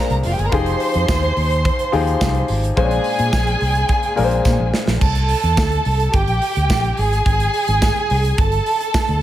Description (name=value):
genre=disco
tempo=107 BPM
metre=4/4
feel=straight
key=unclear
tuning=A4 = 440 Hz
part: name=warm studio violin section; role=second line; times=0.0-9.2 s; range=F4 to C6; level=-20 LUFS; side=right 1 dB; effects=none
part: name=clear baby grand piano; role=accompaniment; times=0.0-5.0 s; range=Bb2 to C5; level=-22 LUFS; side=left 5 dB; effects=none
part: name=fingered electric bass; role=bass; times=0.1-9.2 s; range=F1 to Bb2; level=-19 LUFS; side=equal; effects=none
part: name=modern studio drum kit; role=drums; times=0.1-9.2 s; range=crash cymbal, hi-hat, kick drum, snare drum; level=-21 LUFS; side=right 1 dB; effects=none
part: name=tambourine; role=percussion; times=1.1-9.1 s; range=none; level=-35 LUFS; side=right 8 dB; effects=none
room=small room ambience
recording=none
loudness=-15 LUFS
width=side -12 dB against mid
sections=0.0-5.0 A section; 5.0-9.2 B section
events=drum fill 4.5-5.0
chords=0.0 Bb9; 0.5 Fm9; 2.8 Bb9; 5.0 Cadd9; 6.1 Gm; 7.0 Ab; 8.4 Gsus2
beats=| 0.52 1.08 1.65 2.21 | 2.77 3.33 3.89 4.45 | 5.01 5.58 6.14 6.70 | 7.26 7.82 8.38 8.94